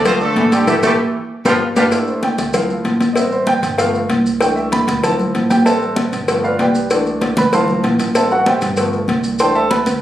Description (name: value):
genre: latin, salsa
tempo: 192 BPM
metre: 4/4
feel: straight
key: C major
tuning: A4 = 442 Hz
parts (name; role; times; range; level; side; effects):
- brilliant trombone section; second line; 0.0-1.8 s; D3 to G3; -24 LUFS; right 1 dB; none
- clear baby grand piano; accompaniment; 0.0-9.9 s; E3 to D6; -17 LUFS; equal; none
- upright bass; bass; 0.0-10.0 s; G1 to D2; -25 LUFS; right 1 dB; none
- brilliant horn section; melody; 0.1-1.8 s; G3 to C5; -19 LUFS; right 1 dB; plate reverb
- congas; percussion; 0.1-10.0 s; none; -19 LUFS; equal; none
- cowbell; percussion; 0.1-10.0 s; none; -20 LUFS; left 2 dB; none
- maracas; percussion; 0.1-10.0 s; none; -31 LUFS; right 1 dB; none
room: wet large studio reverb, RT60 1.1 s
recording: recorded on a phone in the room, club reverb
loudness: -13 LUFS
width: side -12 dB against mid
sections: 0.0-1.9 A section; 1.9-10.0 B section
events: band accent 0.7-1.9; drum fill 1.5-1.9; grand piano solo 1.9-10.0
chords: 0.1 Dm7; 0.7 A5; 1.3 G7; 1.9 D9sus4; 2.5 Dm7; 3.2 Am7; 3.8 G7; 4.4 C6; 5.0 Dm7; 5.7 Am7; 6.3 G7; 6.9 C6; 7.5 Dm7; 8.2 Am7; 8.8 G7; 9.4 C6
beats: 0.05 0.36 | 0.67 0.98 1.30 1.61 | 1.92 2.23 2.54 2.85 | 3.17 3.48 3.79 4.10 | 4.41 4.72 5.04 5.35 | 5.66 5.97 6.28 6.59 | 6.91 7.22 7.53 7.84 | 8.15 8.46 8.78 9.09 | 9.40 9.71